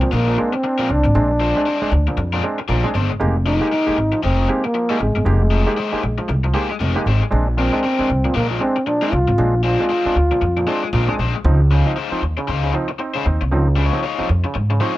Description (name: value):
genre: funk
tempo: 116 BPM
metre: 4/4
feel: swing 60% on 16ths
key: unclear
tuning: A4 = 444 Hz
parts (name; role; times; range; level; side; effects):
- breathy trombone; melody; 0.0-11.1 s; Ab3 to F4; -20 LUFS; equal; none
- raw garage guitar; accompaniment; 0.0-15.0 s; Ab3 to Db5; -25 LUFS; left 8 dB; overdrive
- mellow clav; stabs; 0.0-15.0 s; Bb2 to G4; -24 LUFS; right 2 dB; none
- upright bass; bass; 0.1-14.8 s; F1 to Ab2; -18 LUFS; equal; none
room: small room ambience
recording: dry, close 1970s-style studio recording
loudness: -16 LUFS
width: side -16 dB against mid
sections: 0.0-11.4 A section; 11.4-15.0 B section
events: none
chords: 0.0 Bb9; 3.2 Fm11; 7.3 Bb9; 11.4 Dbmaj9